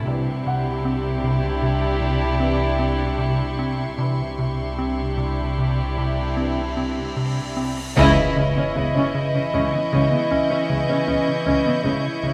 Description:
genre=cinematic, suspense film score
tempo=76 BPM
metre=5/4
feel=straight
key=unclear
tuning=A4 = 441 Hz
part: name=warm chamber violin section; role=melody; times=0.0-12.3 s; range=G4 to D#5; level=-33 LUFS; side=equal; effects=none
part: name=warm studio violin section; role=second line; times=0.0-12.3 s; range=E4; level=-30 LUFS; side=equal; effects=none
part: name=warm studio viola section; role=accompaniment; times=0.0-12.3 s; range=B3 to D4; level=-31 LUFS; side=equal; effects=none
part: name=dark studio double bass section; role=bass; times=0.0-12.3 s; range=C2 to C#2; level=-29 LUFS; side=equal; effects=none
part: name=warm studio cello section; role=bass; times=0.0-12.3 s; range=C3 to C#3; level=-31 LUFS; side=equal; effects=none
part: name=dark concert grand piano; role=texture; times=0.0-12.3 s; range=D#5 to B5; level=-39 LUFS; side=equal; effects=none
part: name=mellow French horn section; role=sustained chords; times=0.1-12.3 s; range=E3 to D#5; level=-28 LUFS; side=equal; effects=none
part: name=rubbery square bass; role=riff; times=0.1-12.3 s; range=C3 to C#4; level=-28 LUFS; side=equal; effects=none
part: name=warm studio violin section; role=texture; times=0.1-12.3 s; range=C6 to G6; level=-40 LUFS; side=equal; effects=none
part: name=cymbal swell and impact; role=sound effects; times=6.4-11.9 s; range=none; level=-34 LUFS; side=equal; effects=none
part: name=timpani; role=percussion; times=8.0-9.1 s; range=C#3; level=-32 LUFS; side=equal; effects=none
room=moderate scoring stage reverb, RT60 1.5 s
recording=none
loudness=-22 LUFS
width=mono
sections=0.0-8.0 A section; 8.0-12.3 B section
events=cymbal swell 6.4-8.0; band accent 8.0-8.8; impact 8.0-11.8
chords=0.1 Cadd9; 8.0 C#madd9

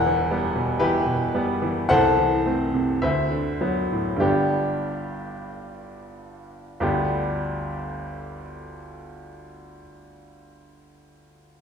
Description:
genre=classical, romantic character piece for solo piano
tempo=44-62 BPM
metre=2/4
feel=rubato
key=G major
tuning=A4 = 438 Hz
part: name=bright upright piano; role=solo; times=0.0-11.6 s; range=E1 to F#5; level=-22 LUFS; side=equal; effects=none
room=wet recital hall reverb, RT60 1.3 s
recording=heard from further back in the room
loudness=-21 LUFS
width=side -7 dB against mid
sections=0.0-6.8 A section; 6.8-11.6 B section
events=slowing down 0.8-6.8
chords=0.0 Em; 1.9 Am/C; 3.0 D13; 4.2 G

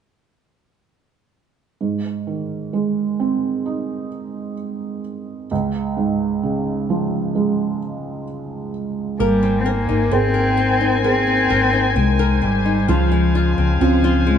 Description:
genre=pop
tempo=65 BPM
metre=4/4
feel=straight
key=Ab major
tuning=A4 = 440 Hz
part: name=felt-muted upright piano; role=accompaniment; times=1.8-14.4 s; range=Db2 to C5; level=-21 LUFS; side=right 4 dB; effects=none
part: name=dark cello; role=melody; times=9.2-14.4 s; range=F3 to C4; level=-19 LUFS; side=left 1 dB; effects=none
part: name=bright brass ensemble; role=sustained chords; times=9.2-14.4 s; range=Eb4 to Ab5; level=-24 LUFS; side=left 3 dB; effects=none
part: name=flamenco guitar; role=arpeggios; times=9.2-14.4 s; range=Db3 to Bb4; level=-25 LUFS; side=left 7 dB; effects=none
part: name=hollow-body short-scale fingered electric bass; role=bass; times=9.2-14.4 s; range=Ab1 to Db2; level=-20 LUFS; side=left 1 dB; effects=none
room=moderate large studio reverb, RT60 1.3 s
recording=band playing live in one room, nothing above 10.7 kHz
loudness=-17 LUFS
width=side -8 dB against mid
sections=1.8-9.2 A section; 9.2-14.4 B section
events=none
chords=1.8 Ab; 5.5 Db; 9.2 Abadd9; 12.9 Dbmaj7

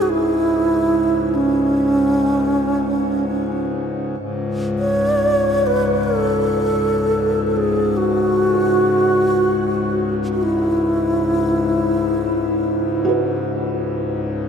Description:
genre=world meditative, free-time meditation music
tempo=free time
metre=none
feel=none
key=C# minor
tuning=A4 = 441 Hz
part: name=wooden-headed alto flute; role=melody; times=0.0-13.5 s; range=C#4 to C#5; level=-18 LUFS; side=right 1 dB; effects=shimmer reverb
part: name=pedal harmonium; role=drone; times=0.0-14.5 s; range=C#2 to G#2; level=-22 LUFS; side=left 3 dB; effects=none
part: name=felt-muted upright piano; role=texture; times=0.0-3.2, 13.0-14.5 s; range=F#4 to B4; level=-23 LUFS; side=right 3 dB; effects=shimmer reverb
room=wet huge ambient reverb, RT60 7.1 s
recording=dark, warm production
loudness=-16 LUFS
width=side -7 dB against mid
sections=0.0-14.5 A section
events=none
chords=none

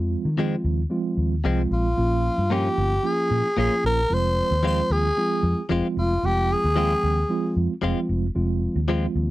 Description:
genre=blues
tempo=113 BPM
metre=4/4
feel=straight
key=F minor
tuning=A4 = 436 Hz
part: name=mellow tine electric piano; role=accompaniment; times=0.0-9.3 s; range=F3 to G5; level=-26 LUFS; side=right 3 dB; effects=medium stereo tremolo
part: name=vintage muted fingered electric bass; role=bass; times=0.0-9.3 s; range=F1 to Eb3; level=-24 LUFS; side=equal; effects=none
part: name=direct-recorded clean electric guitar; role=stabs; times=0.4-9.1 s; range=F2 to F4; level=-27 LUFS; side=left 6 dB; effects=none
part: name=growling tenor saxophone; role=melody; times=1.7-7.6 s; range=F4 to C5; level=-23 LUFS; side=equal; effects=none
room=little or no reverb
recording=dry, close 1970s-style studio recording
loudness=-20 LUFS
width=side -16 dB against mid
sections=0.0-9.3 A section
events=none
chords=0.0 Fm; 2.0 Bbm; 4.1 Fm

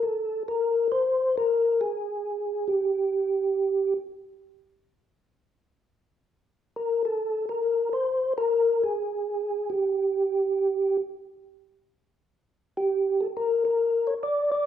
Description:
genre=jazz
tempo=136 BPM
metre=4/4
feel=swing 67% on 8ths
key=unclear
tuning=A4 = 437 Hz
part: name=percussive tonewheel organ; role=solo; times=0.0-3.9, 6.8-14.7 s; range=G4 to D5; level=-23 LUFS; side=equal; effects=slow rotary speaker, chorus vibrato
room=wet large studio reverb, RT60 1.2 s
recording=band playing live in one room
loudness=-23 LUFS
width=side -10 dB against mid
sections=0.0-14.7 A section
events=none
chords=none

